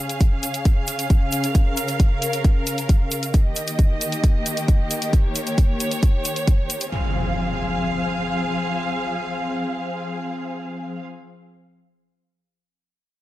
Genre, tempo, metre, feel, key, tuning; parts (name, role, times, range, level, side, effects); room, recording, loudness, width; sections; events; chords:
uplifting trance; 134 BPM; 4/4; straight; F minor; A4 = 440 Hz
dark studio string section; sustained chords; 0.0-11.0 s; Db3 to F5; -25 LUFS; equal; sidechain pumping
electronic hi-hat; drums; 0.1-6.9 s; -30 LUFS; left 2 dB; small room ambience
egg shaker; percussion; 0.1-6.9 s; -31 LUFS; right 3 dB
electronic kick drum; drums; 0.2-6.6 s; -17 LUFS; equal; small room ambience
impact; sound effects; 6.9-11.1 s; -28 LUFS; equal
light reverb; -19 LUFS; side -15 dB against mid
0.0-6.9 A section; 6.9-10.5 B section
0.0 Db; 3.3 Eb; 6.9 Fm